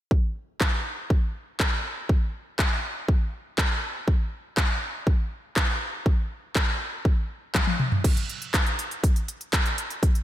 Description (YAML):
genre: italo disco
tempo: 121 BPM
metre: 4/4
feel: straight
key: none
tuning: none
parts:
  - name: electronic kick drum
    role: drums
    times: 0.1-10.1 s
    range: none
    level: -23 LUFS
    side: equal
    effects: none
  - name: house drum kit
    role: drums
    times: 0.6-10.2 s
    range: crash cymbal, handclaps, hi-hat, toms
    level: -27 LUFS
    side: equal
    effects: none
room: moderate lush hall reverb, RT60 1.7 s, digital ambience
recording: dreamy mix soaked in reverb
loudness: -23 LUFS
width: side -13 dB against mid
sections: 0.1-8.0 A section; 8.0-10.2 B section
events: drum fill 7.5-8.0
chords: none